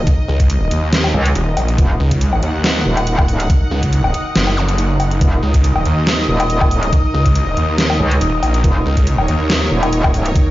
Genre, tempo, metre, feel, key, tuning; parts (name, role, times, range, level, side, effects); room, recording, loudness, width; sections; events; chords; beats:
heavy wobble dubstep; 140 BPM; 4/4; swing 54% on 16ths, half-time; Eb minor; A4 = 440 Hz
supersaw pad; sustained chords; 0.0-10.5 s; Eb4 to Gb5; -24 LUFS; right 1 dB; sidechain pumping
metallic wobble bass; bass; 0.0-10.3 s; Eb1 to Db2; -16 LUFS; equal; chorus, overdrive
sub drop and zap; sound effects; 0.0-0.1, 4.6-4.7 s; -28 LUFS; equal
warbly tape-like pad; texture; 0.5-10.5 s; Eb6; -26 LUFS; left 2 dB; chorus, built-in reverb, phaser, sidechain pumping
dubstep drum kit; drums; 0.1-10.4 s; hi-hat, snare drum, woodblock; -20 LUFS; left 1 dB
electronic kick drum; drums; 0.1-10.4 s; -14 LUFS; equal
snarling distorted saw bass; bass; 0.3-9.7 s; Eb1 to Eb2; -16 LUFS; equal; distortion, overdrive
light reverb; played on a big sound system in a bare room, large studio reverb, nothing above 7.5 kHz; -13 LUFS; side -16 dB against mid
0.0-10.5 A section
0.0 Eb5
| 0.07 0.50 0.93 1.35 | 1.78 2.21 2.64 3.07 | 3.50 3.93 4.36 4.78 | 5.21 5.64 6.07 6.50 | 6.93 7.36 7.78 8.21 | 8.64 9.07 9.50 9.93 | 10.36